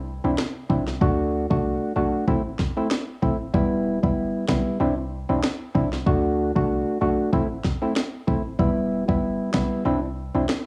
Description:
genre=dancehall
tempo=95 BPM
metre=4/4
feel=swing 56% on 16ths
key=unclear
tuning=A4 = 440 Hz
part: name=warm 808-style bass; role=bass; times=0.0-10.5 s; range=E1 to D2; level=-31 LUFS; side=equal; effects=none
part: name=percussive organ stab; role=accompaniment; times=0.2-10.5 s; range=G3 to F#4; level=-26 LUFS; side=equal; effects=chorus, cassette tape
part: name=island pop drum kit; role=drums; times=0.4-10.7 s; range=finger snaps, kick drum, snare drum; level=-27 LUFS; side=equal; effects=none
room=light reverb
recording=home recording on cassette, small room reverb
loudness=-24 LUFS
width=mono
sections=0.0-10.7 A section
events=break 0.0-8.6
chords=0.0 Cadd9; 1.0 D; 2.3 Am; 3.5 Em; 4.8 Cadd9; 6.1 D; 7.3 Am; 8.6 Em; 9.9 Cadd9

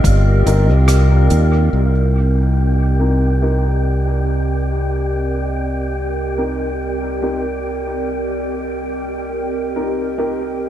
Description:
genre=ambient dub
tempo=71 BPM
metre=4/4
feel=swing 57% on 16ths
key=C minor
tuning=A4 = 440 Hz
part: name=warbly tape-like pad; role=sustained chords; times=0.0-10.7 s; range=C4 to Eb5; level=-22 LUFS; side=right 1 dB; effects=chorus, built-in reverb
part: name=modern bright fingered electric bass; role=bass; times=0.0-10.7 s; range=G1 to Eb2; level=-16 LUFS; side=equal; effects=none
part: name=soft-mallet drum kit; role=drums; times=0.0-1.5 s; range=hi-hat, rim click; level=-28 LUFS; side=right 2 dB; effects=dub echo
part: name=wind-like tuned noise texture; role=texture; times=0.0-10.7 s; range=F4 to G5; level=-28 LUFS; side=left 1 dB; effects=built-in reverb
part: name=dark upright piano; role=stabs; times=0.5-10.4 s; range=C4 to Bb4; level=-25 LUFS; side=left 1 dB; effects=low-pass filter, dub echo
room=small room ambience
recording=dark, warm production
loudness=-15 LUFS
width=side -11 dB against mid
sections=0.0-1.7 A section; 1.7-10.7 B section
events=filter sweep on upright piano 1.7-10.7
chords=0.0 Cm7

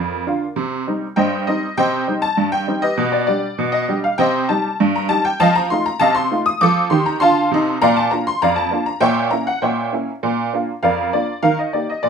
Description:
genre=ragtime piano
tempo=99 BPM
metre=2/4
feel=straight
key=Bb major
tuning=A4 = 439 Hz
part: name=honky-tonk upright piano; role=solo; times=0.0-12.1 s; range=F2 to Eb6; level=-16 LUFS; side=equal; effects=none
room=moderate small room reverb, RT60 0.5 s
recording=minimal, uncompressed stereo recording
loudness=-16 LUFS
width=side -6 dB against mid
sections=0.0-12.1 A section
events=none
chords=0.0 Bb; 0.6 Cm; 3.0 G/B; 4.2 Cm; 5.4 F7; 7.8 Bb; 9.0 Bbdim; 10.2 Bb; 11.4 Eb

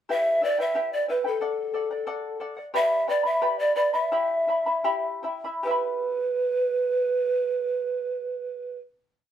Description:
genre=andean folk, Andean ensemble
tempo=72-90 BPM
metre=2/4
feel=straight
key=E minor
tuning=A4 = 440 Hz
part: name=breathy mellow large pan pipes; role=melody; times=0.1-8.8 s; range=A4 to E5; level=-24 LUFS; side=right 1 dB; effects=none
part: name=charango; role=accompaniment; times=0.1-9.2 s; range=E4 to B5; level=-28 LUFS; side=left 2 dB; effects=none
room=moderate studio reverb, RT60 0.5 s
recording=minimal, uncompressed stereo recording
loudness=-23 LUFS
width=side -10 dB against mid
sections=0.1-5.7 A section; 5.7-9.0 final chord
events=slowing down 2.7-5.7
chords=0.1 Em; 1.4 D; 2.7 G; 4.1 Em

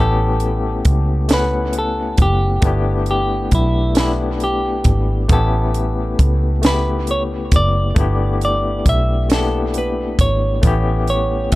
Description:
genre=slow six-eight R&B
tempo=45 BPM (dotted quarters)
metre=6/8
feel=straight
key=G major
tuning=A4 = 440 Hz
part: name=semi-hollow electric guitar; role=melody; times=0.0-11.5 s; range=E4 to E5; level=-22 LUFS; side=equal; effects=dub echo
part: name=barky tine electric piano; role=accompaniment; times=0.0-11.6 s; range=C#3 to F#5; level=-22 LUFS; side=left 4 dB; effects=overdrive, fast tremolo, dub echo
part: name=vintage muted fingered electric bass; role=bass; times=0.0-11.6 s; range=F#1 to C#2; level=-19 LUFS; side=equal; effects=none
part: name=compact cocktail drum kit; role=drums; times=0.4-11.6 s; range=hi-hat, kick drum, snare drum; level=-16 LUFS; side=equal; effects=none
room=small room ambience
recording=echo-heavy mix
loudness=-15 LUFS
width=side -18 dB against mid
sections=0.0-11.6 A section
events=none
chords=0.0 A7; 2.6 G69; 5.3 A7; 8.0 G69; 10.6 A7

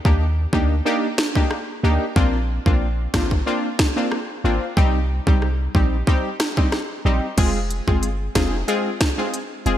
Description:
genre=dancehall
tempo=92 BPM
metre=4/4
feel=straight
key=unclear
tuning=A4 = 440 Hz
part: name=synth brass stab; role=accompaniment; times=0.0-9.8 s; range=G3 to Ab4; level=-23 LUFS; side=equal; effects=chorus
part: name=clean 808-style bass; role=bass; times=0.1-9.8 s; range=F1 to Eb2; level=-21 LUFS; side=equal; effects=none
part: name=island pop drum kit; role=drums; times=0.1-9.8 s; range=crash cymbal, hi-hat, kick drum, rim click, snare drum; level=-20 LUFS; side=equal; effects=overdrive, gated reverb
room=light reverb, digital ambience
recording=bright 1980s-style digital production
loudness=-18 LUFS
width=side -11 dB against mid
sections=0.0-7.4 A section; 7.4-9.8 B section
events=none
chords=0.0 Ebmaj7; 2.2 Bbadd9; 4.8 Cm; 7.4 Fm

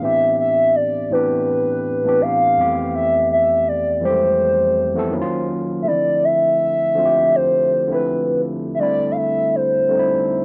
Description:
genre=R&B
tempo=82 BPM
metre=4/4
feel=swing 55% on 16ths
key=unclear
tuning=A4 = 440 Hz
part: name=hollow clarinet-like synth lead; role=melody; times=0.0-10.4 s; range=B4 to F5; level=-19 LUFS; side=equal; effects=chorus, phaser, cassette tape
part: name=overdriven tine electric piano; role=accompaniment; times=0.0-10.4 s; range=F2 to A4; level=-25 LUFS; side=equal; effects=cassette tape
room=wet booth ambience, RT60 0.2 s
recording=home recording on cassette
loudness=-18 LUFS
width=mono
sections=0.0-10.4 A section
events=none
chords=0.0 Am11; 2.6 Fmaj9#11; 5.1 Ebm7; 5.9 Dm7; 8.8 C69

